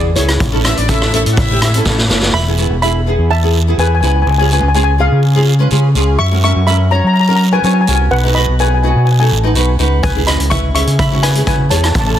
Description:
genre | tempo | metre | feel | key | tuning
calypso | 125 BPM | 4/4 | straight | E major | A4 = 441 Hz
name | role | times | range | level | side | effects
steel pan | melody | 0.0-12.2 s | E4 to C#6 | -17 LUFS | left 2 dB | tape echo
flamenco guitar | accompaniment | 0.0-12.2 s | B3 to C#5 | -19 LUFS | right 1 dB | double-tracked left and right
overdriven fingered electric bass | bass | 0.0-12.2 s | E1 to F#3 | -13 LUFS | equal | none
street-band drum kit | drums | 0.2-2.3, 10.0-12.1 s | hi-hat, kick drum, rim click, snare drum | -16 LUFS | equal | none
guiro | percussion | 0.2-12.2 s | none | -25 LUFS | right 6 dB | none
brilliant horn section | second line | 0.6-2.4 s | C#4 to F#5 | -21 LUFS | left 2 dB | tape echo
room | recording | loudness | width
small room ambience | dense, heavily limited modern master | -10 LUFS | side -10 dB against mid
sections
0.0-2.3 A section; 2.3-12.2 A section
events
drum fill 1.9-2.3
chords
0.4 A; 2.3 E; 4.3 C#; 6.2 F#7; 8.1 B; 10.0 C#m7

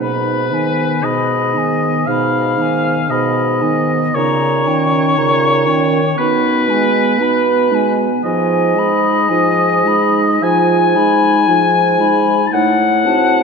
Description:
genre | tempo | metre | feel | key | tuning
classical, slow romantic movement for wind quintet | 58 BPM | 4/4 | rubato | unclear | A4 = 440 Hz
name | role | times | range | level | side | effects
hollow concert flute | melody | 0.0-13.4 s | F#5 to B5 | -21 LUFS | left 8 dB | none
warm oboe | second line | 0.0-13.4 s | B4 to A5 | -16 LUFS | left 4 dB | none
dark clarinet | accompaniment | 0.0-13.4 s | B3 to F#4 | -19 LUFS | right 5 dB | none
mellow French horn | accompaniment | 0.0-13.4 s | B2 to C4 | -20 LUFS | right 1 dB | none
mellow bassoon | bass | 0.0-13.4 s | G#2 to B2 | -19 LUFS | right 3 dB | none
room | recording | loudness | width
wet concert hall reverb, RT60 2.3 s | none | -12 LUFS | side -5 dB against mid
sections
0.0-13.4 A section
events
none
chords
0.0 G#m; 4.1 D#7/A#; 6.2 G#m/B; 8.3 Fm7b5/Ab; 12.5 Adim7

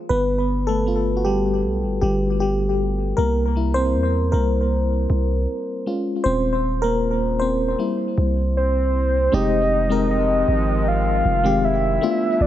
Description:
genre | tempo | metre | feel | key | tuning
R&B | 78 BPM | 4/4 | straight | F minor | A4 = 440 Hz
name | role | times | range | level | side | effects
FM electric piano with auto-pan | accompaniment | 0.1-12.5 s | Eb3 to C5 | -21 LUFS | left 1 dB | tape echo
long sustained 808-style bass | bass | 0.1-12.5 s | Eb1 to E2 | -22 LUFS | right 1 dB | none
soft octave-layered synth lead | melody | 8.6-12.5 s | C5 to F5 | -20 LUFS | equal | chorus, tape echo
hollow soft pad | sustained chords | 9.8-12.5 s | Eb3 to B4 | -28 LUFS | right 2 dB | chorus
room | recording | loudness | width
light reverb | echo-heavy mix | -18 LUFS | side -12 dB against mid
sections
0.0-9.3 A section; 9.3-12.5 B section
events
FM electric piano solo 0.0-9.3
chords
0.0 G7; 3.2 C7; 5.9 Eb9sus4; 7.8 C7; 9.3 Fm7

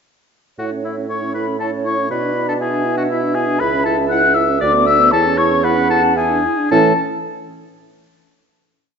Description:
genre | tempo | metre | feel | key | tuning
quick classical-period movement for wind quintet | 118 BPM | 3/4 | straight | A major | A4 = 440 Hz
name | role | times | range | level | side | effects
mellow hollow silver concert flute | melody | 0.6-7.0 s | E5 to F#6 | -19 LUFS | left 7 dB | none
warm oboe | second line | 0.6-6.9 s | E4 to F#5 | -22 LUFS | left 2 dB | none
dark French horn | accompaniment | 0.6-6.9 s | E3 to E4 | -22 LUFS | right 2 dB | none
mellow clarinet | accompaniment | 0.6-6.9 s | C#4 to F#5 | -22 LUFS | right 9 dB | none
mellow bassoon | bass | 0.6-6.9 s | C#2 to B2 | -20 LUFS | right 2 dB | none
room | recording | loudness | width
moderate recital hall reverb, RT60 1.8 s | dark, warm production, nothing above 7.7 kHz | -14 LUFS | side -6 dB against mid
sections
0.6-6.7 A section; 6.7-8.3 final chord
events
none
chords
0.6 A; 2.1 E5/B; 3.6 A69/C#; 4.6 Bm/D; 5.1 A69/E; 6.2 E7; 6.7 A

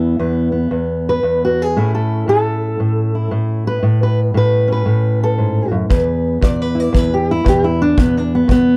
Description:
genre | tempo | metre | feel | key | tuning
acoustic country blues, solo or duo | 116 BPM | 4/4 | swing 63% on 8ths | E mixolydian | A4 = 439 Hz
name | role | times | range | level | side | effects
fingerpicked steel-string acoustic guitar | melody | 0.0-8.8 s | E2 to D5 | -16 LUFS | equal | none
kick drum | drums | 5.9-8.6 s | none | -19 LUFS | equal | none
room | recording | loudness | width
moderate booth ambience, RT60 0.2 s | none | -16 LUFS | mono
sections
0.0-8.8 A section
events
steel-string acoustic guitar solo 0.0-8.8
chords
0.0 E5; 1.8 A; 5.9 E5

